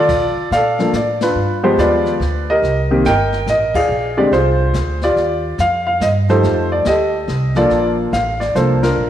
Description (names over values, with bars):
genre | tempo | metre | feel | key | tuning
jazz piano trio | 142 BPM | 3/4 | swing 65% on 8ths | Bb major | A4 = 443 Hz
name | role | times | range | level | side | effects
warm baby grand piano | melody | 0.0-9.1 s | D3 to G5 | -14 LUFS | equal | none
upright bass | bass | 0.1-9.1 s | G1 to Bb2 | -20 LUFS | right 1 dB | none
jazz brush drum kit | drums | 0.1-9.1 s | brushed snare drum, crash cymbal, hi-hat, kick drum, ride cymbal, snare drum | -28 LUFS | left 4 dB | none
room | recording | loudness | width
moderate echo chamber reverb, RT60 1.7 s, small room reverb | 1960s-style stereo | -13 LUFS | side -11 dB against mid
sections
0.1-9.1 A section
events
band accent 1.1, 3.7, 8.8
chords
0.1 Bbmaj7; 1.4 G7b9; 2.6 Cm7; 3.9 Bb13; 5.2 Ebmaj9; 6.4 F9; 7.7 Bbmaj7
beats
| 0.09 0.51 0.94 | 1.36 1.78 2.21 | 2.63 3.05 3.48 | 3.90 4.32 4.75 | 5.17 5.59 6.01 | 6.44 6.86 7.28 | 7.71 8.13 8.55 | 8.97